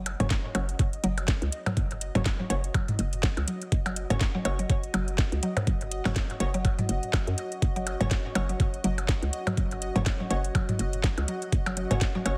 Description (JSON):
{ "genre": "minimal techno", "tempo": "123 BPM", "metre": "4/4", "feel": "swing 57% on 16ths", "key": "unclear", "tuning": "A4 = 439 Hz", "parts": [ { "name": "hollow knocking FM bass", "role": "bass", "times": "0.0-12.4 s", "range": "E1 to F#2", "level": "-33 LUFS", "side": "equal", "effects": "sidechain pumping" }, { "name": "deep dark ambient pad", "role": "texture", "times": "1.2-12.4 s", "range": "F#4 to F#5", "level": "-42 LUFS", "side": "equal", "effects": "chorus, built-in reverb, sidechain pumping" }, { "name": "pulsing gated texture", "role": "texture", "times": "0.1-12.4 s", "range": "D#5", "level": "-46 LUFS", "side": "equal", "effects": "chorus, built-in reverb, sidechain pumping" }, { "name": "garage drum kit", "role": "drums", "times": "0.1-12.4 s", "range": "hi-hat, snare drum", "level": "-36 LUFS", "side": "equal", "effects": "none" }, { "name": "electronic percussion blips and toms", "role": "percussion", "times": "0.1-12.4 s", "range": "none", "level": "-35 LUFS", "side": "equal", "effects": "digital delay" }, { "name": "mallet-like synth pluck", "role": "riff", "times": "0.2-12.2 s", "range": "F#3", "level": "-37 LUFS", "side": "equal", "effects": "analog chorus, sidechain pumping, dub echo" }, { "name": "wavetable chord stab", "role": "stabs", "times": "0.2-12.4 s", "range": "C#4 to C#5", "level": "-40 LUFS", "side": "equal", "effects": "digital delay" }, { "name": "electronic kick drum", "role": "drums", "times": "0.3-12.1 s", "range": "none", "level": "-29 LUFS", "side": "equal", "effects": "none" } ], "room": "light reverb, digital ambience", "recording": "heavily compressed radio sound, multiband compression", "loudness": "-28 LUFS", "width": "mono", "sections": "0.0-12.4 A section", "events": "none", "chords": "0.0 F#5", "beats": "0.30 0.79 1.28 | 1.77 2.26 2.74 3.23 | 3.72 4.21 4.70 5.18 | 5.67 6.16 6.65 7.13 | 7.62 8.11 8.60 9.09 | 9.57 10.06 10.55 11.04 | 11.53 12.01" }